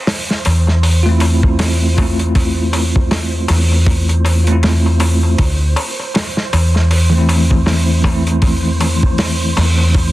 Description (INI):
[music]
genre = trip hop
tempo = 79 BPM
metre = 4/4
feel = swing 59% on 16ths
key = D minor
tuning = A4 = 441 Hz
[part]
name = wind-like tuned noise texture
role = texture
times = 0.0-10.1 s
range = C5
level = -28 LUFS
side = right 6 dB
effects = built-in reverb
[part]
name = warm soul drum kit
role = drums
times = 0.1-10.1 s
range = hi-hat, kick drum, snare drum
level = -17 LUFS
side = equal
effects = none
[part]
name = darbuka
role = percussion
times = 0.1-10.1 s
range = none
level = -26 LUFS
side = left 3 dB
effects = none
[part]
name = deep dub fingered electric bass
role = bass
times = 0.5-10.1 s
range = D2 to E2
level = -14 LUFS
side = equal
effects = none
[part]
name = bell-like tine electric piano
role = accompaniment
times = 1.0-10.1 s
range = E3 to F4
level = -18 LUFS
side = equal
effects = fast stereo tremolo, tape echo
[sound]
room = studio reverb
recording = dense, heavily limited modern master, vinyl crackle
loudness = -12 LUFS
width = side -16 dB against mid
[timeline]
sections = 0.0-10.1 A section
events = none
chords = 0.0 Dm7 (rootless); 5.4 Am/D